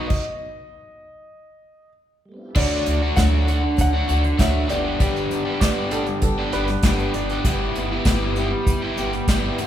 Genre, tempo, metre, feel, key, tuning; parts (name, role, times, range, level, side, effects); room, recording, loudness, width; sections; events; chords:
folk rock and heartland rock; 98 BPM; 4/4; straight; A4 = 440 Hz
warm concert grand piano; melody; 0.0-5.9 s; D5 to F#5; -30 LUFS; left 1 dB
picked steel-string acoustic guitar; accompaniment; 0.0-9.7 s; G2 to G4; -28 LUFS; left 6 dB
mellow tonewheel organ; sustained chords; 0.0-9.7 s; G3 to C5; -35 LUFS; right 1 dB
overdriven electric guitar; riff; 0.0-9.7 s; G2 to G4; -24 LUFS; right 1 dB
upright bass; bass; 0.0-9.7 s; G1 to D2; -25 LUFS; equal
unplugged drum kit; drums; 0.1-9.7 s; crash cymbal, hi-hat, kick drum, snare drum; -22 LUFS; equal
bright upright piano; second line; 5.6-7.7 s; A4 to D5; -30 LUFS; right 4 dB
wet recital hall reverb, RT60 1.8 s; recorded in a church or concert hall; -18 LUFS; side -11 dB against mid
0.0-2.6 A section; 2.6-9.7 B section
stop 0.1-2.6
0.0 B; 2.6 D; 4.7 G; 7.4 Em/G